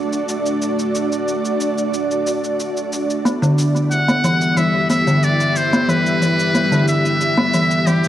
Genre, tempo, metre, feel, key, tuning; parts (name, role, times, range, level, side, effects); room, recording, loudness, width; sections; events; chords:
organic downtempo; 91 BPM; 4/4; straight; E minor; A4 = 440 Hz
ethereal airy pad; sustained chords; 0.0-8.1 s; G3 to E5; -21 LUFS; equal; ensemble chorus, built-in reverb
shaker; drums; 0.1-8.1 s; -31 LUFS; equal
kalimba; arpeggios; 3.3-8.1 s; D3 to B3; -16 LUFS; equal; tape echo
trumpet with metal mute; melody; 3.9-8.1 s; G4 to F#5; -18 LUFS; equal; cassette tape, analog delay
moderate lush hall reverb, RT60 2.9 s; home recording on cassette; -15 LUFS; side -12 dB against mid
0.0-8.1 A section
0.0 D; 3.3 Em